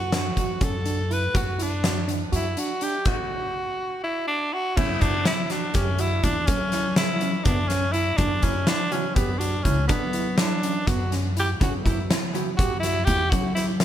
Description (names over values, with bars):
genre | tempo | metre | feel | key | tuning
progressive instrumental, band music in an uneven meter | 246 BPM (eighths) | 7/8 | straight | unclear | A4 = 442 Hz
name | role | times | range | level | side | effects
raspy tenor saxophone | melody | 0.0-13.7 s | B3 to B4 | -26 LUFS | equal | digital delay
upright bass | bass | 0.0-13.8 s | C#2 to F#3 | -26 LUFS | equal | none
tine electric piano | arpeggios | 0.1-13.8 s | B3 to G4 | -32 LUFS | right 4 dB | fast stereo tremolo, digital delay
oversized low-tuned drum kit | drums | 0.1-13.8 s | crash cymbal, hi-hat, kick drum, snare drum | -25 LUFS | equal | gated reverb
vintage hollow-body jazz guitar | accompaniment | 4.8-13.5 s | C#3 to E4 | -34 LUFS | equal | none
room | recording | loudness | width
light reverb, studio ambience | bright 1980s-style digital production | -21 LUFS | side -11 dB against mid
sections
0.0-4.8 A section; 4.8-13.8 B section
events
none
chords
0.0 N.C.; 4.8 F#5; 8.2 Dadd9; 11.6 F#5